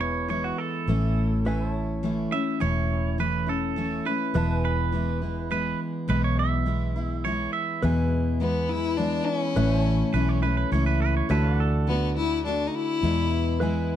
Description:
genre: honky-tonk and classic country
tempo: 104 BPM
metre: 3/4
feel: straight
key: unclear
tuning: A4 = 440 Hz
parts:
  - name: twangy electric guitar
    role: second line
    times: 0.0-11.9 s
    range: F#4 to E5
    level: -30 LUFS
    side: right 8 dB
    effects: tape echo
  - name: picked steel-string acoustic guitar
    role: accompaniment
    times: 0.0-14.0 s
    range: E2 to F#4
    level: -27 LUFS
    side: left 1 dB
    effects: none
  - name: pedal steel guitar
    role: sustained chords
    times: 0.0-14.0 s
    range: B4 to A5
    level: -36 LUFS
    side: right 3 dB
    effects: none
  - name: vintage muted fingered electric bass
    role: bass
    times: 0.0-14.0 s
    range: E1 to E2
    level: -26 LUFS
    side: equal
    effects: none
  - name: clear fiddle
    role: melody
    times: 8.4-13.9 s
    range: B3 to E4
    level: -28 LUFS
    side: left 5 dB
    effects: plate reverb, tape echo
room: light reverb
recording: dark, warm production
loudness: -23 LUFS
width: side -10 dB against mid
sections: 0.0-7.8 A section; 7.8-14.0 B section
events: clean electric guitar solo 0.0-7.8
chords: 0.0 E; 0.9 A; 4.4 E; 9.6 A; 11.3 D; 13.0 E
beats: 0.29 | 0.87 1.45 2.03 | 2.61 3.19 3.77 | 4.35 4.93 5.51 | 6.09 6.67 7.25 | 7.83 8.40 8.98 | 9.56 10.14 10.72 | 11.29 11.87 12.45 | 13.03 13.61

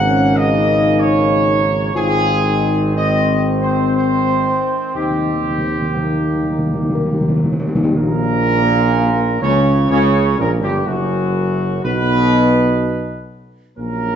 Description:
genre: classical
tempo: 62 BPM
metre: 3/4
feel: straight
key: Ab major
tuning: A4 = 440 Hz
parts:
  - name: warm trumpet section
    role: melody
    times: 0.0-14.2 s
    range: F#4 to Gb5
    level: -19 LUFS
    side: right 2 dB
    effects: none
  - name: warm trombone section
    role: sustained chords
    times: 0.0-14.2 s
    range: F#2 to Db4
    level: -23 LUFS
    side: right 3 dB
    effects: none
  - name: mellow tuba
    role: bass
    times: 0.0-14.2 s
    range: F#1 to Eb2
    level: -19 LUFS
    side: right 2 dB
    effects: none
  - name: mellow French horn section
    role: sustained chords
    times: 0.1-14.2 s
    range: F#3 to Bb4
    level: -20 LUFS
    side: left 5 dB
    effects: none
  - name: timpani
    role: percussion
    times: 5.0-7.9 s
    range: Eb3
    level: -19 LUFS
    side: left 1 dB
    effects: none
room: wet recital hall reverb, RT60 1.3 s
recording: nothing above 7.9 kHz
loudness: -14 LUFS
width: side -8 dB against mid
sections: 0.0-8.0 A section; 8.0-14.2 B section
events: timpani fill 5.0-8.0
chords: 0.0 Absus4; 2.0 Ab; 5.0 Eb; 8.0 Gdim; 10.9 B5/F#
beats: 0.05 1.00 | 1.95 2.95 3.95 | 4.95 5.95 6.95 | 7.96 8.93 9.90 | 10.86 11.85 12.82 | 13.78

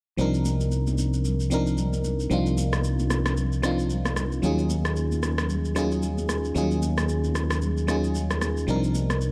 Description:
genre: amapiano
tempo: 113 BPM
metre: 4/4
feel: swing 58% on 16ths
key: unclear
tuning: A4 = 440 Hz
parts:
  - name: FM electric piano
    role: accompaniment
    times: 0.2-9.3 s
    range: F3 to Bb4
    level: -29 LUFS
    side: equal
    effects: chorus
  - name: fingered electric bass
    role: bass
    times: 0.2-9.3 s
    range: C2 to Eb2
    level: -28 LUFS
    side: equal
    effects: none
  - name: electronic shaker and rim click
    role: drums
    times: 0.2-9.3 s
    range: none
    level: -34 LUFS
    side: equal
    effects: none
  - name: congas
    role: percussion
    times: 0.2-9.2 s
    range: none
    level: -38 LUFS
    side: equal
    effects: none
room: light reverb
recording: dark, warm production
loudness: -25 LUFS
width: mono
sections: 0.2-9.3 A section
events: none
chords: 0.2 Cm11; 4.4 Ebm11; 8.7 Cm11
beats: | 0.19 0.72 1.25 1.78 | 2.31 2.84 3.37 3.90 | 4.43 4.96 5.50 6.03 | 6.56 7.09 7.62 8.15 | 8.68 9.21

